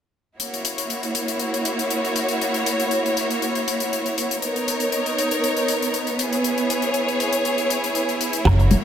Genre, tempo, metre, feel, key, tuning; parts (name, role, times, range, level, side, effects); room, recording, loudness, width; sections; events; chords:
nu-disco, nu disco; 119 BPM; 4/4; swing 53% on 16ths; F# mixolydian; A4 = 440 Hz
clear studio string section; sustained chords; 0.4-8.8 s; A#3 to C#5; -21 LUFS; equal; sidechain pumping
hi-hat; drums; 0.4-8.8 s; -26 LUFS; left 4 dB
semi-hollow electric guitar; riff; 8.5-8.6 s; -24 LUFS; right 4 dB; ensemble chorus
chorused synth bass; bass; 8.5-8.8 s; F#1; -15 LUFS; equal; sidechain pumping
kick drum; drums; 8.5-8.6 s; -23 LUFS; equal
congas; percussion; 8.7-8.8 s; -18 LUFS; left 2 dB
moderate echo chamber reverb, RT60 2.3 s; -20 LUFS; side -9 dB against mid
0.4-8.8 A section
0.4 F#7; 4.4 Bmaj9; 6.2 C#m7